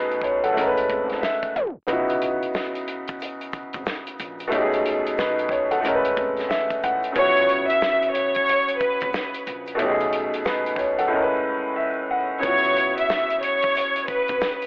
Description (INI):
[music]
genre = hip hop, boom-bap hip-hop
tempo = 91 BPM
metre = 4/4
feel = swing 62% on 16ths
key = C# minor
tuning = A4 = 440 Hz
[part]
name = clear upright piano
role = accompaniment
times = 0.0-14.7 s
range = A2 to F#5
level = -23 LUFS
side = equal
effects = cassette tape, high-pass filter, low-pass filter
[part]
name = warm soul drum kit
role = drums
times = 0.1-14.7 s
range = hi-hat, kick drum, snare drum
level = -31 LUFS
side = equal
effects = cassette tape
[part]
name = upright bass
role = bass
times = 0.6-14.4 s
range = G#1 to C#2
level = -34 LUFS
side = equal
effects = none
[part]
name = tube shaker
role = percussion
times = 1.9-14.7 s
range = none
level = -60 LUFS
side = right 1 dB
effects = none
[part]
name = warm studio violin section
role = melody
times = 7.2-14.6 s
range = B4 to E5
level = -20 LUFS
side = equal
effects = high-pass filter, low-pass filter, cassette tape, tape echo
[sound]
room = moderate spring reverb, RT60 2.3 s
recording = home recording on cassette, vinyl crackle, tape stop, telephone sound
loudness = -20 LUFS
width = side -32 dB against mid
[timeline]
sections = 0.0-1.9 A section; 1.9-14.7 B section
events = tape stop 1.6-1.9; drums muted 11.1-12.4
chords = 0.0 B13; 0.6 Amaj9; 1.9 C#m11; 4.5 B13; 5.8 Amaj9; 7.2 C#m7; 9.8 B13; 11.1 Amaj9; 12.4 C#m7